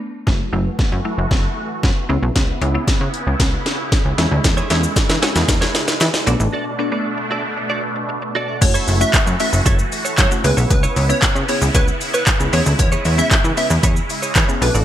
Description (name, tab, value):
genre	dance-pop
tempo	115 BPM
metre	4/4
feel	straight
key	F# minor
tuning	A4 = 436 Hz
part	mallet-like synth pluck	accompaniment	0.0-14.8 s	F#3 to B4	-26 LUFS	left 2 dB	chorus, sidechain pumping
part	filtered supersaw swell	sustained chords	0.3-14.8 s	B2 to F#4	-25 LUFS	right 1 dB	wide subtle chorus, sidechain pumping
part	plucky analog bass	bass	0.3-14.8 s	F#1 to E3	-19 LUFS	equal	sidechain pumping
part	house drum kit	drums	0.3-14.8 s	crash cymbal, handclaps, hi-hat, kick drum, shaker, snare drum	-17 LUFS	equal	gated reverb
part	direct-recorded clean electric guitar	riff	4.4-14.8 s	E4 to D5	-26 LUFS	right 4 dB	analog chorus
part	group handclap	percussion	5.0-14.5 s	none	barely audible	none	none
part	plucky unison lead	melody	8.6-14.7 s	B4 to E5	-23 LUFS	right 1 dB	sidechain pumping, digital delay
room	light reverb, digital ambience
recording	bright 1980s-style digital production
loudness	-15 LUFS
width	side -11 dB against mid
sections	0.3-8.6 A section; 8.6-14.8 B section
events	break 0.0, 6.5-8.6; build-up 0.3-8.6; drum fill 0.3-6.5; drop 8.6-14.8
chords	0.3 F#m7; 2.1 C#m7; 4.2 E6; 6.3 Bm7; 8.6 F#m7; 10.4 C#m7; 12.5 E6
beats	| 0.27 0.79 1.31 1.83 | 2.36 2.88 3.40 3.92 | 4.44 4.97 5.49 6.01 | 6.53 7.05 7.58 8.10 | 8.62 9.14 9.66 10.18 | 10.71 11.23 11.75 12.27 | 12.79 13.31 13.84 14.36